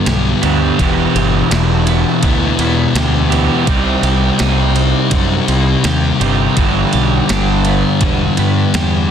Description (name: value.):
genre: rock, shoegaze and dream pop.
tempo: 83 BPM.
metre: 4/4.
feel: straight.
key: G major.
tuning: A4 = 441 Hz.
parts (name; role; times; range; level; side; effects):
twelve-string electric guitar; arpeggios; 0.0-9.1 s; E3 to G4; -23 LUFS; right 13 dB; wide subtle chorus, slapback echo.
raw garage guitar; riff; 0.0-9.1 s; E2 to G4; -20 LUFS; right 14 dB; overdrive, reverse reverb.
thick fuzz guitar; riff; 0.0-9.1 s; E2 to C4; -15 LUFS; left 8 dB; distortion, lush chorus.
fuzz picked electric bass; bass; 0.1-9.1 s; E1 to G2; -17 LUFS; right 1 dB; overdrive.
boom bap sampler-style drum kit; drums; 0.1-8.9 s; kick drum, ride cymbal, snare drum; -21 LUFS; right 1 dB; none.
room: digital ambience.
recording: dense, heavily limited modern master.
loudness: -11 LUFS.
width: side -8 dB against mid.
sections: 0.0-9.1 A section.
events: none.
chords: 0.0 G6; 0.8 Em7; 3.7 Cm; 6.6 G6.